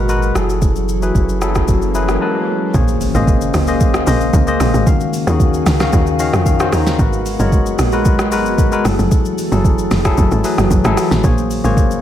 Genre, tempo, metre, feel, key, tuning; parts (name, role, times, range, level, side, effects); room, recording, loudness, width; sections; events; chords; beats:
amapiano; 113 BPM; 4/4; straight; Bb phrygian; A4 = 440 Hz
tine electric piano; accompaniment; 0.0-12.0 s; Eb3 to Bb5; -18 LUFS; left 4 dB
glassy FM pad; sustained chords; 0.0-12.0 s; Bb2 to F5; -22 LUFS; right 1 dB; ensemble chorus, built-in reverb
punchy sub bass; bass; 0.0-2.2 s; Gb1 to Ab1; -19 LUFS; right 1 dB
smooth R&B drum kit; drums; 0.1-12.0 s; hi-hat, kick drum, rim click, shaker, snare drum; -16 LUFS; right 1 dB
swell and impact; sound effects; 1.3-4.9 s; -25 LUFS; right 1 dB
tight log drum bass; bass; 2.7-12.0 s; F1 to F2; -17 LUFS; equal
light reverb, digital ambience; -12 LUFS; side -11 dB against mid
0.0-2.7 A section; 2.7-12.0 B section
swell 1.3-2.7; tine electric piano fill 1.7-2.7, 5.9-7.0; break 2.2-2.7; drop 2.7-12.0; impact 2.7-4.9
0.4 Gbm9; 2.7 Bbm9; 4.9 Ebm9; 7.0 Abm9; 8.8 Gbm9; 11.2 Bbm9
0.09 | 0.62 1.15 1.68 2.21 | 2.74 3.27 3.81 4.34 | 4.87 5.40 5.93 6.46 | 6.99 7.52 8.05 8.58 | 9.12 9.65 10.18 10.71 | 11.24 11.77